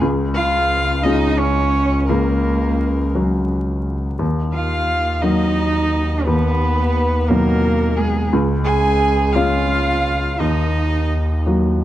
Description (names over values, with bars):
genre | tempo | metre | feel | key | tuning
neoclassical piano and strings | 58 BPM (dotted quarters) | 6/8 | rubato | unclear | A4 = 441 Hz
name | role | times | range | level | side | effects
felt-muted upright piano | accompaniment | 0.0-11.8 s | Db2 to Gb4 | -21 LUFS | left 1 dB | none
muted double bass | bass | 0.0-11.8 s | Db2 to Eb2 | -20 LUFS | equal | none
muted violin | melody | 0.3-11.5 s | Ab4 to Ab5 | -24 LUFS | left 2 dB | none
muted cello | second line | 0.4-11.5 s | Ab3 to Ab4 | -22 LUFS | right 4 dB | none
room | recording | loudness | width
light reverb | dark, warm production, vinyl crackle | -16 LUFS | side -13 dB against mid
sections
0.0-11.8 A section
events
none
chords
0.0 Db; 2.1 Gb/Db; 4.2 Ebm; 6.3 B/D#; 8.3 Db; 10.4 Ebm